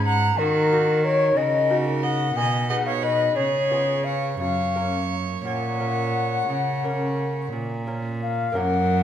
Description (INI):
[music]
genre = classical, baroque-style sonata movement with continuo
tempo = 57-61 BPM (dotted quarters)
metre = 12/8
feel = rubato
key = F# major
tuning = A4 = 436 Hz
[part]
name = baroque flute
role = melody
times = 0.0-9.0 s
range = A#4 to A#5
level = -23 LUFS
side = left 4 dB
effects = none
[part]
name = lute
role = accompaniment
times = 0.0-9.0 s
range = F#2 to A#4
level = -30 LUFS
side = right 1 dB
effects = none
[part]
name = rich cello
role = bass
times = 0.0-9.0 s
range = F#2 to D#3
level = -26 LUFS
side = right 2 dB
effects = none
[part]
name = rich violin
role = second line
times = 0.1-9.0 s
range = F#4 to F#5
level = -29 LUFS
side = right 7 dB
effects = none
[sound]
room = wet recital hall reverb, RT60 1.6 s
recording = minimal, uncompressed stereo recording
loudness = -20 LUFS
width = side -10 dB against mid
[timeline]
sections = 0.0-8.6 A section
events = none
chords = 0.4 D#m; 2.4 G#m/B; 3.4 C#7; 4.4 F#